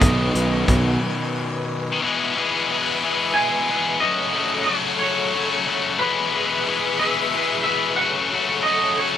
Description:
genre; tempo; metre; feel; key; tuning
indie rock; 60 BPM (dotted quarters); 6/8; straight; E major; A4 = 439 Hz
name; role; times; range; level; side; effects
twangy electric guitar; melody; 0.0-9.2 s; B4 to G#5; -24 LUFS; right 1 dB; lush chorus, slapback echo
string machine, violins; sustained chords; 0.0-9.2 s; G#4 to E6; -29 LUFS; equal; ensemble chorus
electric guitar through a small old amp; riff; 0.0-2.0 s; B2 to F#4; -28 LUFS; right 9 dB; analog chorus
scooped high-gain guitar; riff; 0.0-9.2 s; E2 to B4; -21 LUFS; left 4 dB; distortion
fuzz picked electric bass; bass; 0.0-1.0 s; B1; -21 LUFS; equal; overdrive
loose indie drum kit; drums; 0.0-0.8 s; hi-hat, kick drum; -19 LUFS; equal; none
room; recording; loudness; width
studio ambience; rough home demo mix; -18 LUFS; side -10 dB against mid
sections
0.0-2.0 A section; 2.0-9.2 B section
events
break 1.0-2.0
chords
0.0 Badd9; 2.0 E; 4.0 F#m; 6.0 E; 8.0 F#m

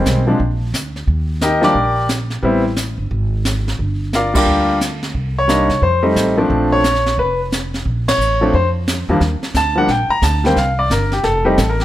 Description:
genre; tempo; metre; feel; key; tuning
jazz piano trio; 177 BPM; 4/4; swing 64% on 8ths; Bb major; A4 = 440 Hz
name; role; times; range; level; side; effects
clear baby grand piano; melody; 0.0-11.8 s; Eb2 to Bb5; -15 LUFS; left 1 dB; none
upright bass; bass; 0.0-11.8 s; F1 to C3; -19 LUFS; equal; none
jazz brush drum kit; drums; 0.1-11.8 s; brushed snare drum, hi-hat, kick drum, ride cymbal, snare drum; -22 LUFS; right 1 dB; none
room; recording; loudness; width
light reverb; none; -14 LUFS; side -14 dB against mid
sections
0.0-9.2 A section; 9.2-11.8 B section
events
band accent 4.3, 8.0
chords
0.4 Bb; 1.1 Ebmaj7; 2.4 Am7; 3.1 N.C.; 3.8 Gm7; 5.1 Cm7; 5.8 F7; 6.5 Bb5; 9.2 Ebmaj7; 10.6 C5; 11.2 Fadd9

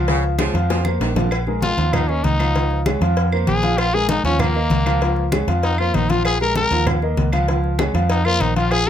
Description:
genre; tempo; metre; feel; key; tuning
latin, salsa; 195 BPM; 4/4; straight; Bb minor; A4 = 440 Hz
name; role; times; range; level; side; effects
warm concert grand piano; accompaniment; 0.0-8.9 s; F3 to F5; -22 LUFS; equal; none
vintage muted fingered electric bass; bass; 0.0-8.9 s; Bb1 to F2; -20 LUFS; right 1 dB; none
clear saxophone section; second line; 0.1-1.2 s; Db3 to F3; -26 LUFS; right 1 dB; none
congas; percussion; 0.1-8.9 s; none; -25 LUFS; left 1 dB; none
cowbell and bongos; percussion; 0.1-8.9 s; none; -28 LUFS; left 4 dB; none
claves; percussion; 0.4-8.9 s; none; -32 LUFS; right 2 dB; none
growling trumpet; melody; 1.6-8.9 s; Bb3 to Bb4; -21 LUFS; left 3 dB; none
room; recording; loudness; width
light reverb; close, detailed microphones; -16 LUFS; side -10 dB against mid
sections
0.0-1.3 A section; 1.3-8.9 B section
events
drum fill 0.7-1.3; trumpet solo 1.3-8.9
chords
0.1 Db; 0.7 F7sus4; 1.3 Bb5; 1.9 Ebsus2; 2.5 Db; 3.2 Fsus4; 3.8 Bb5; 4.4 Ebsus2; 5.0 Db; 5.6 Fsus4; 6.2 Bb5; 6.9 Ebsus2; 7.5 Db; 8.1 Fsus4

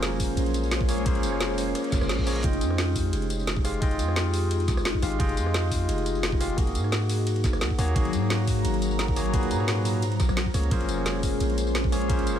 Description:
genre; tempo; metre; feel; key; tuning
liquid drum and bass; 174 BPM; 4/4; swing 54% on 16ths; F minor; A4 = 442 Hz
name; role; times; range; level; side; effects
barky tine electric piano; accompaniment; 0.0-12.4 s; Bb2 to G5; -31 LUFS; equal; medium stereo tremolo, tape echo
ethereal airy pad; sustained chords; 0.0-12.4 s; Gb3 to Bb5; -32 LUFS; equal; ensemble chorus, built-in reverb, phaser, sidechain pumping
vibraphone with medium mallets; arpeggios; 0.0-12.4 s; Eb4 to Gb5; -33 LUFS; left 4 dB; dub echo
long sustained 808-style bass; bass; 0.0-12.4 s; Eb1 to Ab2; -28 LUFS; equal; none
drum and bass drum kit; drums; 0.0-12.4 s; hi-hat, ride cymbal, rim click, snare drum, tambourine; -32 LUFS; equal; none
electronic kick drum; drums; 0.2-12.2 s; none; -27 LUFS; equal; none
reverse cymbal; sound effects; 1.9-2.4 s; none; -38 LUFS; equal; none
room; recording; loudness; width
little or no reverb; echo-heavy mix; -23 LUFS; side -10 dB against mid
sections
0.0-12.4 A section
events
reverse cymbal 1.9-2.4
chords
0.0 Bbm9; 2.4 Fm9; 6.6 Abm9; 10.0 Bbm9

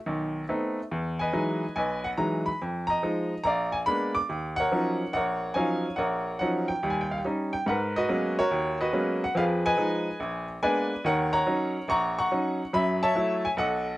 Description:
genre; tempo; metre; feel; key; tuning
solo jazz; 142 BPM; 4/4; swing 68% on 8ths; Eb minor, G# minor from 7.7 s; A4 = 440 Hz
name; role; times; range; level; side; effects
bright upright piano; solo; 0.1-14.0 s; Bb1 to D6; -25 LUFS; equal; none
room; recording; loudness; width
light reverb; dark, warm production; -25 LUFS; side -17 dB against mid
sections
0.0-7.7 A section; 7.7-14.0 B section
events
none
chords
0.1 B7b9; 0.9 Emaj9; 2.6 F7sus4; 3.4 Bb7b9; 4.3 Ebm9; 6.8 Eb7; 7.7 G#m11; 9.4 Fm7b5; 10.2 A#7b9; 11.0 D#m7; 12.7 F#m7

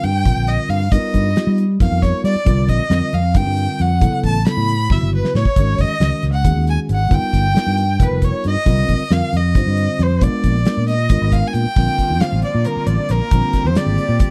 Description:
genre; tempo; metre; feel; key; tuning
electric jazz fusion; 271 BPM (eighths); 7/8; straight; unclear; A4 = 440 Hz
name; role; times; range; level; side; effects
clear violin; melody; 0.0-14.3 s; Bb4 to B5; -25 LUFS; equal; slapback echo
bright reedy concert flute; second line; 0.0-14.3 s; Bb4 to B5; -30 LUFS; equal; none
mellow tine electric piano; accompaniment; 0.0-14.3 s; C#3 to C5; -25 LUFS; equal; phaser
fingered electric bass; bass; 0.0-14.2 s; F1 to G3; -20 LUFS; equal; none
damped 70s drum kit; drums; 0.0-14.3 s; crash cymbal, hi-hat, kick drum, snare drum, toms; -19 LUFS; equal; none
rich chamber string section; sustained chords; 11.7-14.3 s; D3 to G4; -32 LUFS; equal; none
room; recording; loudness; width
little or no reverb; dry, close 1970s-style studio recording; -17 LUFS; mono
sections
0.0-11.8 A section; 11.8-14.3 B section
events
drum fill 4.9-5.6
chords
0.0 Ebmaj7; 0.9 G7alt; 2.5 Cm9; 4.0 A13; 5.6 Ab9sus4; 7.1 G7alt; 8.7 Cm9; 10.2 Bb7b9; 11.8 Bbmaj7; 13.3 Bb13

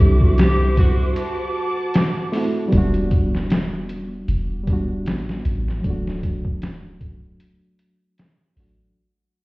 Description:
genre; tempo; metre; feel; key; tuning
trip hop; 77 BPM; 4/4; swing 56% on 16ths; unclear; A4 = 436 Hz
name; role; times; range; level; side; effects
electric slide guitar; melody; 0.0-2.3 s; F#4 to G4; -25 LUFS; right 1 dB; vintage 12-bit sampler grit, tape echo
barky reed electric piano; accompaniment; 0.0-9.0 s; F#3 to F#4; -25 LUFS; equal; fast tremolo, harmonic tremolo, tape echo
rich chamber violin section; sustained chords; 0.0-2.7 s; C5 to D6; -29 LUFS; equal; vintage 12-bit sampler grit
soft 808-style bass; bass; 0.0-8.9 s; D1 to C2; -22 LUFS; equal; none
boom bap sampler-style drum kit; drums; 0.2-8.8 s; hi-hat, kick drum, snare drum; -19 LUFS; equal; small room ambience
room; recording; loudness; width
light reverb, digital ambience; heard muffled through a wall, stone room reverb, EQ; -18 LUFS; side -21 dB against mid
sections
0.0-2.7 A section; 2.7-9.0 B section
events
break 1.2-2.7; fade-out 2.7-9.0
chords
0.0 Cadd9; 1.2 D7; 2.7 Em7; 5.8 D

